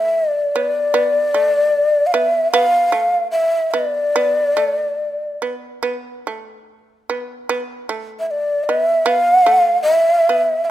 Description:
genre	japanese traditional, Japanese chamber music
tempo	74 BPM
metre	2/4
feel	rubato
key	D kumoi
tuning	A4 = 440 Hz
part	breathy mellow shakuhachi	melody	0.0-5.4, 8.2-10.7 s	D5 to F5	-14 LUFS	equal	none
part	shamisen	second line	0.0-10.7 s	A3 to B3	-23 LUFS	right 4 dB	none
room	light reverb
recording	close, detailed microphones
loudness	-14 LUFS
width	side -13 dB against mid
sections	0.0-10.7 A section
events	none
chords	none

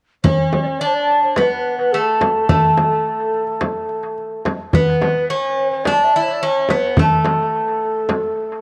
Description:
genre	Turkish makam ensemble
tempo	107 BPM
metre	4/4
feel	straight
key	unclear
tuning	A4 = 440 Hz
part	Greek bouzouki	melody	0.2-8.6 s	A3 to E4	-20 LUFS	equal	dub echo
part	breathy mellow ney	second line	0.2-8.6 s	A4 to E5	-24 LUFS	equal	none
part	darbuka	percussion	0.2-8.3 s	none	-23 LUFS	equal	none
part	frame drum	percussion	0.2-8.2 s	none	-23 LUFS	equal	none
room	light reverb, small room reverb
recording	echo-heavy mix, cassette tape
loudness	-18 LUFS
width	mono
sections	0.2-8.6 A section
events	none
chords	none

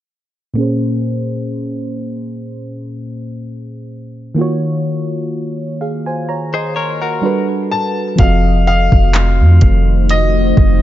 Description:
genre	contemporary R&B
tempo	63 BPM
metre	4/4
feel	swing 54% on 16ths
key	Bb minor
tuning	A4 = 439 Hz
part	mellow FM electric piano	accompaniment	0.5-10.8 s	Bb2 to C6	-19 LUFS	equal	chorus, low-pass filter
part	direct-recorded clean electric guitar	arpeggios	6.5-7.5 s	Gb4 to Db5	-22 LUFS	left 7 dB	low-pass filter, ping-pong delay
part	bright baby grand piano	melody	7.7-10.8 s	Eb5 to A5	-19 LUFS	left 2 dB	ping-pong delay
part	deep dark ambient pad	sustained chords	9.1-10.8 s	Eb3 to C5	-20 LUFS	left 2 dB	chorus, built-in reverb
part	soft 808-style bass	bass	8.2-10.8 s	F1 to F2	-12 LUFS	equal	none
part	smooth R&B drum kit	drums	8.2-10.8 s	handclaps, hi-hat, kick drum	-12 LUFS	equal	none
part	glassy wavetable pluck	texture	8.7-10.8 s	Eb5 to C6	-33 LUFS	right 1 dB	none
room	digital ambience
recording	dark, warm production, nothing above 7.6 kHz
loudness	-13 LUFS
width	side -13 dB against mid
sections	0.6-8.2 A section; 8.2-10.8 B section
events	filter sweep 0.6-8.2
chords	0.6 Bbm7; 4.4 Ebm9; 7.2 Gmaj9; 8.2 F7b9

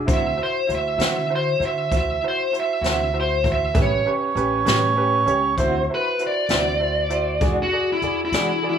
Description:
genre	slow blues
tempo	65 BPM (dotted quarters)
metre	12/8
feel	straight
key	unclear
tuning	A4 = 441 Hz
part	upright bass	bass	0.0-8.8 s	A1 to E3	-28 LUFS	equal	none
part	dark smooth lead guitar	melody	0.1-8.8 s	E4 to E5	-22 LUFS	equal	overdrive
part	bright upright piano	accompaniment	0.1-8.8 s	C#4 to D5	-26 LUFS	right 2 dB	none
part	mellow electric guitar	accompaniment	0.1-8.5 s	A2 to F#4	-29 LUFS	left 1 dB	tremolo
part	jazz brush drum kit	drums	0.1-8.5 s	hi-hat, kick drum, snare drum	-24 LUFS	left 1 dB	none
part	mellow harmonica	second line	4.1-5.9 s	C5 to C#5	-22 LUFS	right 5 dB	overdrive
room	studio ambience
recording	rough home demo mix, small room ambience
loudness	-18 LUFS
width	side -8 dB against mid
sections	0.0-8.8 A section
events	none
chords	0.1 D9; 3.7 A9; 5.6 D9; 7.4 E9

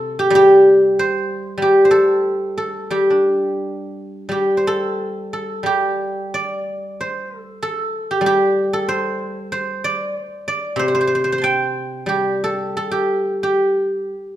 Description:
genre	chinese traditional, Chinese solo plucked strings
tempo	82-96 BPM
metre	4/4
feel	rubato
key	unclear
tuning	A4 = 439 Hz
part	guzheng	solo	0.0-14.4 s	C3 to C6	-16 LUFS	equal	none
room	moderate recital hall reverb, RT60 1.4 s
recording	minimal, uncompressed stereo recording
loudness	-16 LUFS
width	side -12 dB against mid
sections	0.0-14.4 A section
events	none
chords	none

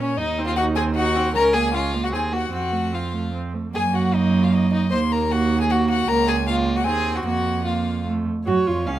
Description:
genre	quick classical-period movement for string quartet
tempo	152 BPM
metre	3/4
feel	rubato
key	Bb minor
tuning	A4 = 441 Hz
part	rich violin	melody	0.0-9.0 s	Db4 to C6	-27 LUFS	left 5 dB	none
part	rich violin	second line	0.0-9.0 s	Db4 to F5	-24 LUFS	left 2 dB	none
part	warm viola	accompaniment	0.0-9.0 s	A3 to Gb4	-25 LUFS	right 4 dB	none
part	rich cello	bass	0.0-9.0 s	Db2 to Bb2	-23 LUFS	right 3 dB	none
room	moderate large studio reverb, RT60 1.1 s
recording	none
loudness	-19 LUFS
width	side -12 dB against mid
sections	0.0-8.5 A section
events	none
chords	0.2 Cdim/Eb; 1.3 Bbm/Db; 2.1 Cm7b5/Eb; 2.5 F; 3.7 Gb; 4.9 Eb5; 6.1 Bbm/Db; 6.9 Ab7/Eb; 7.3 Bb5/F; 8.1 F; 8.5 Dbadd11

